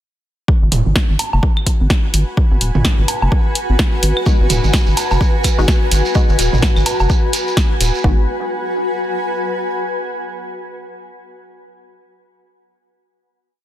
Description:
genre	minimal techno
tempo	127 BPM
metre	4/4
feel	swing 60% on 16ths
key	G# minor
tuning	A4 = 438 Hz
part	electronic kick drum	drums	0.5-8.2 s	none	-14 LUFS	equal	overdrive
part	granular cloud pad	texture	1.9-9.9 s	F#4 to G#5	-21 LUFS	left 1 dB	built-in reverb, sidechain pumping
part	rubbery square bass	bass	0.6-8.3 s	D#1 to G#1	-15 LUFS	equal	sidechain pumping
part	punchy analog drum machine	drums	0.7-7.9 s	hi-hat, snare drum	-20 LUFS	equal	overdrive
part	electronic toms, woodblock and claves	percussion	0.7-7.1 s	none	-22 LUFS	right 2 dB	none
part	filtered dub chord stab	stabs	4.3-8.2 s	G#3 to F#4	-26 LUFS	left 2 dB	chorus, cassette tape, dub echo
part	shekere	percussion	4.3-8.0 s	none	-25 LUFS	right 4 dB	none
room	light reverb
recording	dense, heavily limited modern master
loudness	-13 LUFS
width	side -12 dB against mid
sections	0.5-8.0 groove; 8.0-9.9 final chord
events	none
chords	0.5 G#m7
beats	| 0.48 0.96 1.43 1.90 | 2.37 2.85 3.32 3.79 | 4.26 4.74 5.21 5.68 | 6.15 6.63 7.10 7.57 | 8.04 8.52 8.99 9.46

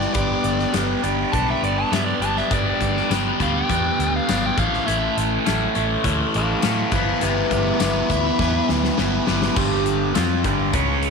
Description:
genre	classic rock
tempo	102 BPM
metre	4/4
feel	straight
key	unclear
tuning	A4 = 440 Hz
part	dark smooth lead guitar	melody	0.0-8.7 s	G4 to A5	-27 LUFS	left 3 dB	overdrive
part	biting overdriven guitar	riff	0.0-11.1 s	G2 to B4	-20 LUFS	equal	phaser
part	picked electric bass	bass	0.0-11.1 s	G1 to A2	-26 LUFS	right 1 dB	none
part	big rock drum kit	drums	0.0-11.1 s	crash cymbal, hi-hat, kick drum, snare drum, tambourine	-26 LUFS	left 4 dB	none
room	light reverb, small room ambience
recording	1960s-style stereo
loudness	-18 LUFS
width	side -5 dB against mid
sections	0.0-9.6 A section; 9.6-11.1 B section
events	lead electric guitar solo 0.0-9.6; drum fill 8.4-9.6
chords	0.2 G; 4.6 A; 6.9 Em/G; 9.6 G5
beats	| 0.16 0.75 1.34 1.92 | 2.51 3.10 3.69 4.28 | 4.87 5.45 6.04 6.63 | 7.22 7.80 8.39 8.98 | 9.56 10.15 10.73

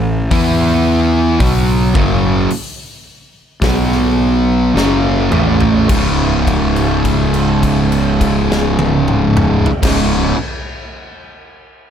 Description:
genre	stoner and doom metal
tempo	52-56 BPM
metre	4/4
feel	straight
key	C# minor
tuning	A4 = 441 Hz
part	fuzz guitar	riff	0.0-10.4 s	C#2 to E4	-14 LUFS	equal	distortion
part	fuzz fingered electric bass	bass	0.0-10.3 s	C#1 to E2	-18 LUFS	equal	overdrive
part	big rock drum kit	drums	0.3-10.1 s	crash cymbal, hi-hat, kick drum, snare drum, toms	-18 LUFS	equal	none
room	studio ambience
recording	none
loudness	-11 LUFS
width	side -8 dB against mid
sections	0.0-5.9 A section; 5.9-10.5 B section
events	slowing down 0.0-5.9; drum fill 4.7-5.9; held note 5.9-9.8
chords	0.3 E5; 1.4 F#sus4; 3.6 B5; 4.7 A5; 5.9 C#5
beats	0.31 | 1.40 2.50 3.62 4.75 | 5.89 7.05 8.21 9.36

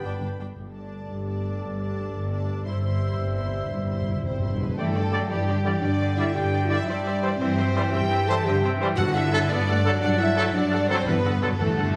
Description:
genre	cinematic, heroic adventure film score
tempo	114 BPM (dotted quarters)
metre	6/8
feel	straight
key	G major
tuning	A4 = 440 Hz
part	warm symphonic violin section	melody	0.0-12.0 s	G4 to C6	-38 LUFS	equal	none
part	bright clarinet	second line	0.0-12.0 s	B3 to F#5	-39 LUFS	equal	none
part	clear oboe	second line	0.0, 4.8-12.0 s	G5 to A5	-37 LUFS	equal	none
part	warm symphonic violin section	second line	0.0-12.0 s	G4 to A5	-39 LUFS	equal	none
part	clear studio viola section	accompaniment	0.0-11.8 s	D4 to F#5	-40 LUFS	equal	none
part	warm trombone section	sustained chords	0.0-11.5 s	G2 to B3	-38 LUFS	equal	none
part	mellow trumpet	stabs	0.0-11.5 s	A4 to G5	-35 LUFS	equal	none
part	rich symphonic cello section	bass	0.0-11.9 s	G2 to B3	-32 LUFS	equal	none
part	rich symphonic double bass section	bass	0.0-12.0 s	G1 to G2	-30 LUFS	equal	none
part	mellow flute section	second line	0.6-12.0 s	G4 to E6	-38 LUFS	equal	none
part	warm French horn section	sustained chords	0.6-12.0 s	G3 to A4	-32 LUFS	equal	none
part	timpani	percussion	0.6-4.8, 9.0-12.0 s	G2	-35 LUFS	equal	none
room	moderate scoring stage reverb, RT60 1.5 s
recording	none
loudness	-24 LUFS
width	mono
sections	0.6-4.8 A section; 4.8-12.0 B section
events	timpani fill 2.7-4.8, 11.1-12.0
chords	0.0 G; 0.6 Gsus2; 2.7 C/G; 4.8 Gsus2; 6.9 C/G; 9.0 D/G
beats	0.04 | 0.57 1.10 | 1.62 2.14 | 2.66 3.19 | 3.72 4.25 | 4.79 5.31 | 5.84 6.36 | 6.88 7.41 | 7.93 8.46 | 8.98 9.50 | 10.02 10.55 | 11.07 11.60

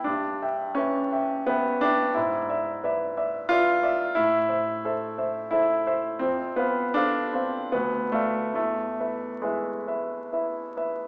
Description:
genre	classical, romantic nocturne for solo piano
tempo	67-92 BPM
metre	3/4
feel	rubato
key	unclear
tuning	A4 = 441 Hz
part	warm grand piano	solo	0.0-11.1 s	D2 to G5	-26 LUFS	equal	none
room	wet recital hall reverb, RT60 1.7 s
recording	recorded in a church or concert hall, vinyl crackle, small speaker sound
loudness	-26 LUFS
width	mono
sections	0.0-11.1 A section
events	none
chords	0.1 Em/G; 2.2 E7/G#; 4.2 Am; 6.2 F; 7.7 Bm7b5/D; 8.6 E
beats	| 0.07 0.77 1.49 | 2.17 2.84 3.50 | 4.16 4.84 5.52 | 6.21 6.96 7.74 | 8.57 9.43 10.32

